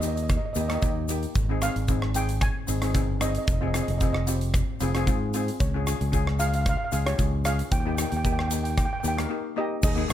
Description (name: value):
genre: calypso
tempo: 113 BPM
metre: 4/4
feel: straight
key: unclear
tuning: A4 = 441 Hz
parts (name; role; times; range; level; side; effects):
- steel pan; melody; 0.0-10.1 s; G4 to Ab5; -31 LUFS; right 2 dB; none
- steel pan; accompaniment; 0.0-10.1 s; Bb3 to Bb4; -31 LUFS; left 3 dB; none
- modern bright fingered electric bass; bass; 0.0-10.1 s; F1 to Ab2; -27 LUFS; equal; none
- big rock drum kit; drums; 0.0-10.1 s; crash cymbal, hi-hat, kick drum, rim click; -28 LUFS; equal; none
- tube shaker; percussion; 0.0-10.1 s; none; -37 LUFS; left 6 dB; none
room: light reverb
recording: none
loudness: -23 LUFS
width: side -11 dB against mid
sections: 0.0-9.8 A section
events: break 9.3-9.8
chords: 0.0 Eb; 1.4 Abmaj7; 3.5 Fm; 5.6 Db; 7.7 Eb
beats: 0.29 0.83 | 1.36 1.89 2.42 2.95 | 3.48 4.01 4.54 5.07 | 5.60 6.13 6.66 7.19 | 7.72 8.25 8.78 9.30 | 9.83